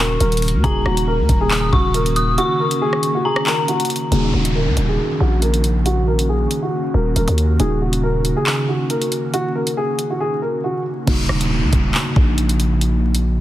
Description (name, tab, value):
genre	hip hop, drill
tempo	138 BPM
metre	4/4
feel	half-time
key	Eb minor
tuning	A4 = 438 Hz
part	dark concert grand piano	melody	0.0-10.8 s	Gb4 to Bb4	-22 LUFS	equal	low-pass filter
part	dark detuned synth bell	second line	0.0-4.1 s	Bb5 to Eb6	-22 LUFS	left 3 dB	chorus, digital delay
part	muted felt-like synth keys	accompaniment	0.0-13.4 s	Db3 to Gb4	-24 LUFS	equal	chorus, phaser, low-pass filter
part	airy breathy pad	sustained chords	0.0-11.0 s	Eb3 to Gb4	-26 LUFS	equal	chorus, low-pass filter
part	growling 808-style bass	bass	0.0-8.3, 11.1-13.4 s	Eb1 to Eb2	-18 LUFS	equal	none
part	drill drum kit	drums	0.2-13.2 s	crash cymbal, handclaps, hi-hat, kick drum, rim click	-20 LUFS	equal	none
part	downlifter	sound effects	4.1-7.6, 11.1-13.4 s	none	-28 LUFS	equal	none
room	light reverb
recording	dense, heavily limited modern master, vinyl crackle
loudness	-16 LUFS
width	side -14 dB against mid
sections	0.0-4.1 A section; 4.1-11.1 B section; 11.1-13.4 C section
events	kick muted 2.4-4.1; filter sweep 4.1-11.1; drums muted 10.2-11.1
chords	0.0 Ebm7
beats	0.20 | 0.64 1.07 1.51 1.94 | 2.38 2.81 3.25 3.68 | 4.12 4.55 4.99 5.42 | 5.86 6.29 6.73 7.16 | 7.60 8.03 8.46 8.90 | 9.34 9.77 10.20 10.64 | 11.07 11.51 11.94 12.38 | 12.81 13.25